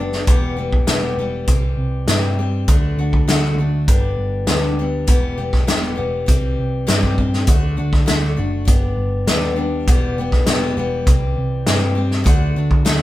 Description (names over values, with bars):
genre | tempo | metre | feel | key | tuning
folk rock and heartland rock | 100 BPM | 4/4 | straight | G major | A4 = 440 Hz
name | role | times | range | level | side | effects
picked steel-string acoustic guitar | accompaniment | 0.0-13.0 s | E2 to G4 | -23 LUFS | left 3 dB | none
hollow-body short-scale picked electric bass | bass | 0.0-13.0 s | E1 to G2 | -21 LUFS | right 1 dB | none
vintage drum kit | drums | 0.1-13.0 s | hi-hat, kick drum, snare drum | -16 LUFS | equal | none
room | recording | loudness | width
moderate small room reverb, RT60 0.5 s | band playing live in one room | -15 LUFS | side -15 dB against mid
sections
0.0-13.0 A section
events
none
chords
0.3 Em; 1.5 C; 2.7 D; 3.9 G; 5.1 Em; 6.3 C; 7.5 D; 8.7 G; 9.9 Em; 11.1 C; 12.3 D